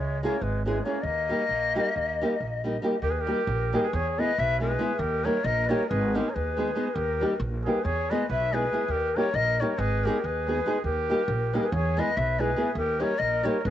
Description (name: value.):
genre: balkan folk.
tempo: 276 BPM (eighths).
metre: 9/8.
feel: straight.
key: Eb phrygian dominant.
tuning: A4 = 440 Hz.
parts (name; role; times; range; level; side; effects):
breathy ney; melody; 0.0-13.7 s; Bb4 to E5; -28 LUFS; left 4 dB; cassette tape, tape echo.
warm trumpet; second line; 0.0-13.7 s; Ab3 to Cb5; -34 LUFS; right 10 dB; none.
upright bass; bass; 0.0-13.7 s; Ab1 to E2; -30 LUFS; right 1 dB; none.
nylon-string guitar; accompaniment; 0.2-13.6 s; G3 to Ab4; -28 LUFS; equal; none.
room: light reverb, small room ambience.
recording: home recording on cassette, nothing above 8.0 kHz.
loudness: -24 LUFS.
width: side -11 dB against mid.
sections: 0.0-3.0 A section; 3.0-13.7 B section.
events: speeding up 0.0-13.7.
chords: 0.0 Dbm; 1.0 Eb; 3.9 E; 5.0 Eb; 5.9 Abm; 6.9 Eb; 7.8 E; 8.9 Eb; 9.8 Abm; 10.8 Eb; 11.7 E; 12.8 Eb.